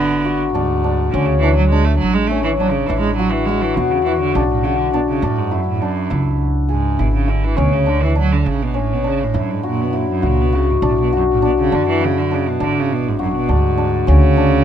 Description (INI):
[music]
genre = contemporary instrumental, chamber music in an uneven meter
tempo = 204 BPM (eighths)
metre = 11/8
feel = straight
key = B dorian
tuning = A4 = 438 Hz
[part]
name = rich cello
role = melody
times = 0.0-14.6 s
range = F#2 to A3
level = -20 LUFS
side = right 5 dB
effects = none
[part]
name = cimbalom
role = arpeggios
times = 0.0-14.6 s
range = C#4 to G#4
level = -19 LUFS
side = left 4 dB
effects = none
[part]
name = upright bass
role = bass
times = 0.0-14.6 s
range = G#1 to F#2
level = -19 LUFS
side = right 1 dB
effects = none
[sound]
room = little or no reverb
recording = close, detailed microphones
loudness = -14 LUFS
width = side -9 dB against mid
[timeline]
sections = 0.0-14.6 A section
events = none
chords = 0.0 G#m7b5; 1.1 D5; 2.9 A5; 4.3 Bm; 6.1 C#m; 7.6 D5; 9.3 F#5; 10.8 Bm; 12.6 G#m7b5; 14.1 D5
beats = 0.25 0.54 0.84 | 1.13 1.42 1.72 2.01 2.30 2.59 2.89 3.18 3.47 3.77 4.06 | 4.35 4.64 4.93 5.22 5.52 5.81 6.11 6.40 6.69 6.99 7.28 | 7.58 7.87 8.16 8.46 8.75 9.05 9.34 9.64 9.94 10.23 10.53 | 10.83 11.13 11.43 11.72 12.02 12.31 12.61 12.90 13.20 13.49 13.78 | 14.08 14.37